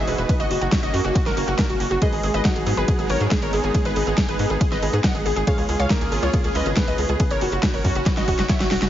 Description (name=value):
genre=uplifting trance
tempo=139 BPM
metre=4/4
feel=straight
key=G# minor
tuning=A4 = 440 Hz
part: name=wide unison pluck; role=melody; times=0.0-8.9 s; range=E#4 to F#5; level=-25 LUFS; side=equal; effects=sidechain pumping, tape echo
part: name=plucky unison lead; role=second line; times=0.0-8.9 s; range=F#4 to F#5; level=-31 LUFS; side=equal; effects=analog chorus, sidechain pumping, tape echo
part: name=warm grand piano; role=second line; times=0.0-8.8 s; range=F#3 to D#5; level=-31 LUFS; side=equal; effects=tape echo
part: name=supersaw pad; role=sustained chords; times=0.0-8.9 s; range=C#3 to G#4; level=-29 LUFS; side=right 1 dB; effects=sidechain pumping
part: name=tight sequencer bass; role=bass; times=0.0-8.9 s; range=E1 to G#2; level=-25 LUFS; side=equal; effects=sidechain pumping
part: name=big-room dance drum kit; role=drums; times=0.1-8.9 s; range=hi-hat, ride cymbal, snare drum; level=-27 LUFS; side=equal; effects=sidechain pumping on hats, sidechain pumping on cymbals
part: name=electronic kick drum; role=drums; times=0.3-8.6 s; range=none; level=-22 LUFS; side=equal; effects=none
room=digital ambience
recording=heavily compressed radio sound, nothing above 7.5 kHz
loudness=-18 LUFS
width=side -11 dB against mid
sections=0.0-8.9 A section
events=drum fill 8.1-8.9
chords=0.3 F#; 2.0 G#m; 5.5 C#; 7.2 F#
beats=| 0.29 0.72 1.16 1.59 | 2.02 2.45 2.88 3.31 | 3.75 4.18 4.61 5.04 | 5.47 5.90 6.34 6.77 | 7.20 7.63 8.06 8.49